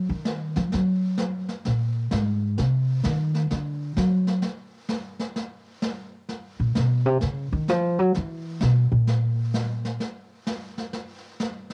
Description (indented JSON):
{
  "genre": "jazz piano trio",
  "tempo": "129 BPM",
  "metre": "4/4",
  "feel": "swing 67% on 8ths",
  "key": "unclear",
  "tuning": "A4 = 439 Hz",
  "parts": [
    { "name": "upright bass", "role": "bass", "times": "0.0-10.0 s", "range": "Ab2 to Gb3", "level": "-24 LUFS", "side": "equal", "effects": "none" },
    { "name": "snare drum and brushed snare drum", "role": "drums", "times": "0.3-11.7 s", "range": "none", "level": "-34 LUFS", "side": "equal", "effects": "cassette tape" }
  ],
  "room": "little or no reverb",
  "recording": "home recording on cassette",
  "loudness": "-25 LUFS",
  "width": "mono",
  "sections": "0.0-11.7 A section",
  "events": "upright bass solo 0.0-11.7",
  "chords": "none"
}